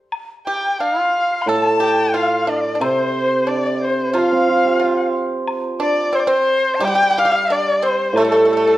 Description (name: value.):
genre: chinese traditional, Chinese chamber ensemble.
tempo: 89 BPM.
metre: 4/4.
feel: rubato.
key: C zhi mode.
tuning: A4 = 442 Hz.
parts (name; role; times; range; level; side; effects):
woodblock; percussion; 0.1-8.3 s; none; -30 LUFS; left 3 dB; none.
dark erhu; melody; 0.5-8.8 s; A4 to C6; -19 LUFS; equal; none.
bright dizi; second line; 0.5-8.8 s; A4 to A5; -21 LUFS; left 3 dB; none.
pipa; second line; 0.5-8.7 s; A3 to A4; -25 LUFS; right 3 dB; none.
hammered dulcimer; accompaniment; 1.5-8.8 s; A2 to C5; -19 LUFS; right 2 dB; none.
room: moderate recital hall reverb, RT60 1.2 s.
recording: worn, warbling old tape, cassette tape, warbly pitch drift.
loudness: -15 LUFS.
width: side -15 dB against mid.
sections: 0.1-8.8 A section.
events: none.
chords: none.